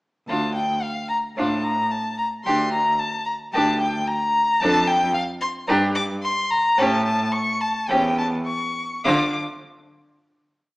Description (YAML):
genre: quick classical-period movement for string quartet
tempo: 109 BPM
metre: 4/4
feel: uneven beats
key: D minor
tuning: A4 = 443 Hz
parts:
  - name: clear violin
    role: melody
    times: 0.3-9.4 s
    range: F5 to D6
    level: -22 LUFS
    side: left 1 dB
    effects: none
  - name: rich violin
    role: second line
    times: 0.3-9.4 s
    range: F4 to A4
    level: -25 LUFS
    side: equal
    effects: none
  - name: rich viola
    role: accompaniment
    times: 0.3-9.4 s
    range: C#4 to D4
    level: -25 LUFS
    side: equal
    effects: none
  - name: clear cello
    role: bass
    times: 0.3-9.4 s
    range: D2 to D3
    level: -27 LUFS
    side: right 1 dB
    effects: none
room: moderate recital hall reverb, RT60 1.3 s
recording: recorded in a church or concert hall, small speaker sound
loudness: -19 LUFS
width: side -21 dB against mid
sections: 0.3-9.1 A section; 9.1-10.8 final chord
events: none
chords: 0.3 Dm; 2.5 Gm/D; 4.6 Dm/F; 5.7 G5; 6.8 A7; 9.1 N.C.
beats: | 0.28 0.83 1.37 1.92 | 2.46 3.00 3.54 4.08 | 4.62 5.16 5.69 6.24 | 6.79 7.34 7.90 8.47 | 9.06